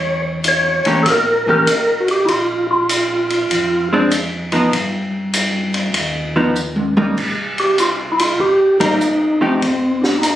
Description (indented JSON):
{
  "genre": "soul jazz organ trio",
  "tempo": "98 BPM",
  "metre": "4/4",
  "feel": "swing 67% on 8ths",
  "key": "unclear",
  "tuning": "A4 = 436 Hz",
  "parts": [
    { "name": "percussive tonewheel organ", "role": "melody", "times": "0.0-3.9, 7.6-10.4 s", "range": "C4 to Db5", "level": "-15 LUFS", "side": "equal", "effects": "fast rotary speaker" },
    { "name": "mellow tonewheel organ", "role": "bass", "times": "0.0-10.4 s", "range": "F1 to G2", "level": "-27 LUFS", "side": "equal", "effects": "chorus vibrato, slow rotary speaker" },
    { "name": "open jazz drum kit", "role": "drums", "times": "0.4-10.4 s", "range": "crash cymbal, hi-hat, kick drum, ride cymbal, snare drum, toms", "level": "-20 LUFS", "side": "equal", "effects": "none" },
    { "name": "vintage hollow-body jazz guitar", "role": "accompaniment", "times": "0.9-9.6 s", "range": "E3 to G4", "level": "-16 LUFS", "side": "equal", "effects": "none" }
  ],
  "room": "light reverb",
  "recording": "recorded on a phone in the room, studio reverb",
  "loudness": "-14 LUFS",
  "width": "side -12 dB against mid",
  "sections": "0.0-10.4 A section",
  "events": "drum fill 6.6-7.2; band accent 8.7-9.0",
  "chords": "0.0 Edim7; 2.3 Bb5; 4.7 G(#5, no3); 7.2 Cm; 9.6 F5",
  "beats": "0.45 1.06 1.68 | 2.29 2.90 3.51 4.12 | 4.73 5.34 5.95 6.56 | 7.17 7.78 8.39 9.01 | 9.62 10.22"
}